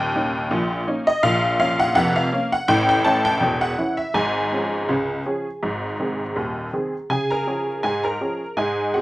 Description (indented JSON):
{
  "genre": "ragtime piano",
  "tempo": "82 BPM",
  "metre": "2/4",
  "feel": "swing 55% on 16ths",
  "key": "Db major",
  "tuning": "A4 = 437 Hz",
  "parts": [
    { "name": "honky-tonk upright piano", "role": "solo", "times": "0.0-9.0 s", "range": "Eb1 to Bb5", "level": "-19 LUFS", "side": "equal", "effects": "none" }
  ],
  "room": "light reverb",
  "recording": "none",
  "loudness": "-19 LUFS",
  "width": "side -17 dB against mid",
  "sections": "0.0-7.1 A section; 7.1-9.0 B section",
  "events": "none",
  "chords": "0.0 Eb7; 1.2 Bbm; 2.7 A; 4.2 Db/Ab; 5.6 Ab; 7.1 Db",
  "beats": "0.51 | 1.24 1.96 | 2.69 3.43 | 4.16 4.89 | 5.63 6.36 | 7.10 7.83 | 8.56"
}